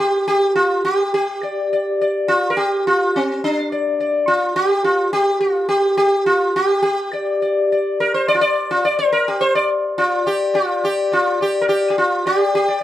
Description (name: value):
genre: indian classical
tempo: 105 BPM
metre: 5/4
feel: straight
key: D raga malkauns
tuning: A4 = 440 Hz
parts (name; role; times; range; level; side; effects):
- sitar; solo; 0.0-12.8 s; C4 to D5; -15 LUFS; equal; none
room: light reverb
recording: none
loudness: -15 LUFS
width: side -13 dB against mid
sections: 0.0-12.5 A section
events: none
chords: none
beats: 0.00 0.57 | 1.14 1.72 2.29 2.86 3.43 | 4.00 4.57 5.14 5.71 6.28 | 6.85 7.42 7.99 8.56 9.12 | 9.69 10.26 10.82 11.39 11.95 | 12.52